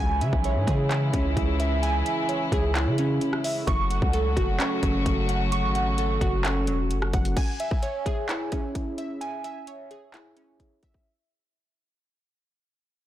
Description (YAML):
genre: hip hop, trap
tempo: 130 BPM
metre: 4/4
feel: half-time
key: C# minor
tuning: A4 = 440 Hz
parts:
  - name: warm chamber string section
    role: sustained chords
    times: 0.0-7.3 s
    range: C#3 to F#4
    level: -30 LUFS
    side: left 1 dB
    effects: none
  - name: glassy digital keys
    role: arpeggios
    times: 0.0-11.1 s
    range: F#3 to C#6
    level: -28 LUFS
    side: right 2 dB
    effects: chorus, digital delay
  - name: long sustained 808-style bass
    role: bass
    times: 0.0-7.4 s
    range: E1 to C#3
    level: -26 LUFS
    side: left 1 dB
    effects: none
  - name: trap drum kit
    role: drums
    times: 0.2-11.1 s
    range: crash cymbal, handclaps, hi-hat, kick drum, rim click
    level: -28 LUFS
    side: equal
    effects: none
room: light reverb, digital ambience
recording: blown-out, overdriven recording, overdrive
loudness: -23 LUFS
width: side -12 dB against mid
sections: 0.0-7.4 A section; 7.4-11.1 B section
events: fade-out 7.4-11.1; drum fill 10.6-11.1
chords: 0.0 C#m; 3.7 F#m; 7.4 C#m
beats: 0.44 0.91 1.37 | 1.83 2.29 2.75 3.21 | 3.67 4.14 4.60 5.06 | 5.52 5.98 6.44 6.91 | 7.37 7.83 8.29 8.75 | 9.21 9.67 10.14 10.60